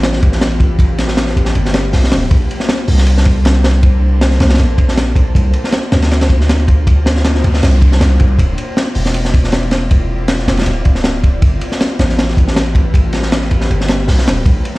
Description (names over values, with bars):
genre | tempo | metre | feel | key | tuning
drum and bass, jungle | 158 BPM | 4/4 | straight | unclear | A4 = 440 Hz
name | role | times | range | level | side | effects
ethereal airy pad | sustained chords | 0.0-14.8 s | A3 to D5 | -23 LUFS | left 1 dB | ensemble chorus, built-in reverb, vintage 12-bit sampler grit
long sustained 808-style bass | bass | 0.0-14.6 s | D1 to D2 | -13 LUFS | equal | none
crunchy breakbeat drum kit | drums | 0.0-14.8 s | hi-hat, kick drum, ride cymbal, snare drum | -13 LUFS | equal | none
noise sweep | sound effects | 7.1-8.4 s | none | -31 LUFS | equal | none
room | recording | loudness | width
small room ambience | played on a big sound system in a bare room, stone room reverb, vinyl crackle | -10 LUFS | side -20 dB against mid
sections
0.0-14.8 A section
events
noise sweep 7.1-8.4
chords
0.0 G9; 2.3 Bbmaj9; 5.3 C9sus4; 8.4 Dm9; 11.4 G9